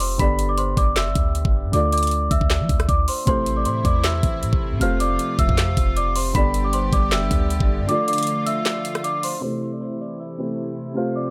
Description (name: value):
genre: hip hop, trap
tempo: 156 BPM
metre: 4/4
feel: half-time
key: A minor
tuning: A4 = 442 Hz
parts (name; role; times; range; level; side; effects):
- celesta; melody; 0.0-11.3 s; C5 to B6; -27 LUFS; equal; low-pass filter, tape echo
- dark grand piano; accompaniment; 0.0-11.3 s; C3 to D5; -30 LUFS; equal; low-pass filter
- clean 808-style bass; bass; 0.0-7.9 s; F1 to F3; -25 LUFS; equal; none
- trap drum kit; drums; 0.0-9.3 s; handclaps, hi-hat, kick drum, rim click, snare drum; -25 LUFS; equal; none
- clear studio string section; sustained chords; 3.3-11.3 s; C3 to G4; -32 LUFS; equal; low-pass filter
room: small room ambience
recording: none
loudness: -21 LUFS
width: mono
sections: 0.0-9.4 A section; 9.4-11.3 B section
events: break 7.9-9.4; filter sweep 9.4-11.3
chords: 0.2 G; 1.7 Dm; 3.3 Am; 4.8 F; 6.3 G; 7.9 Dm; 9.4 Am